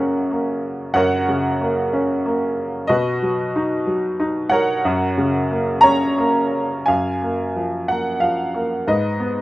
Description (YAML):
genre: classical, lyrical solo piano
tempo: 92 BPM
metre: 3/4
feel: rubato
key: F# major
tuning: A4 = 440 Hz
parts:
  - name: clear upright piano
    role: solo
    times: 0.0-9.4 s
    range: F#2 to A#5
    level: -17 LUFS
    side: equal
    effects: none
room: little or no reverb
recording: close, detailed microphones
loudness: -17 LUFS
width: side -17 dB against mid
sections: 0.0-6.9 A section; 6.9-9.4 B section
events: none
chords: 0.0 F#; 2.9 B; 4.8 F#; 6.9 Gbmaj7; 8.9 Abm